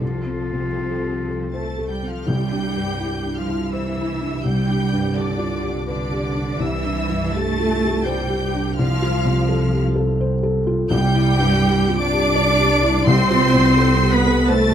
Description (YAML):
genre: cinematic, emotional film score for orchestra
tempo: 84 BPM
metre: 3/4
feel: rubato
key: C major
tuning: A4 = 440 Hz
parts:
  - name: rich studio violin section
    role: melody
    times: 0.0-14.7 s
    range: C5 to D7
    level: -28 LUFS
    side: left 2 dB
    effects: none
  - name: clear clarinet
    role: second line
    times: 0.0-1.9 s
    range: F4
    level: -28 LUFS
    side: left 3 dB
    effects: none
  - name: rich studio violin section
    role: second line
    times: 0.0-14.7 s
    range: A4 to D6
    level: -28 LUFS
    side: left 1 dB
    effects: none
  - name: felt-muted upright piano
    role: accompaniment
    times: 0.0-14.7 s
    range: C2 to D5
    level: -22 LUFS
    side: left 2 dB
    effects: none
  - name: rich studio viola section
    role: accompaniment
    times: 0.0-14.7 s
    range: C4 to D5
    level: -26 LUFS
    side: equal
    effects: none
  - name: rich studio cello section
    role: bass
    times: 0.0-14.7 s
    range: D3 to D4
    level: -24 LUFS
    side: right 2 dB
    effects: none
  - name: rich studio double bass section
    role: bass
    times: 0.0-14.7 s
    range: C2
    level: -23 LUFS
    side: right 3 dB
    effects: none
  - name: timpani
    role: percussion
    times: 2.3-3.3, 10.9-14.1 s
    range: C3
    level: -25 LUFS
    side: equal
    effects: none
room: moderate scoring stage reverb, RT60 1.6 s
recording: none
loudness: -17 LUFS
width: side -9 dB against mid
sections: 0.0-2.3 A section; 2.3-14.7 A section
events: none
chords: 0.0 F/C; 2.3 Cadd9; 4.4 G/C; 6.6 Cadd9; 8.8 F/C; 10.9 Cadd9; 13.1 F/C